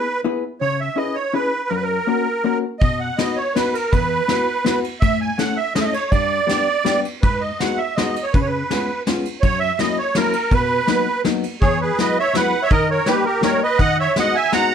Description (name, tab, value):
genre	musette waltz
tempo	164 BPM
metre	3/4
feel	straight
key	unclear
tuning	A4 = 438 Hz
part	musette accordion	melody	0.0-14.7 s	G4 to A#5	-19 LUFS	right 3 dB	none
part	vintage hollow-body jazz guitar	accompaniment	0.0-14.7 s	E2 to B4	-22 LUFS	left 5 dB	none
part	soft brush drum kit	drums	2.8-14.6 s	hi-hat, kick drum, ride cymbal, snare drum	-22 LUFS	equal	none
room	moderate studio reverb, RT60 0.6 s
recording	none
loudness	-17 LUFS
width	side -8 dB against mid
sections	0.0-11.6 A section; 11.6-14.7 B section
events	none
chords	0.0 E; 0.6 C#m7; 1.7 F#; 2.8 B; 3.9 Esus2; 5.0 A; 6.1 G; 7.2 G#m7; 8.3 C#7; 9.4 F#7; 10.5 Bmaj7; 11.6 Eadd9; 12.7 D#; 13.8 G#m7/D#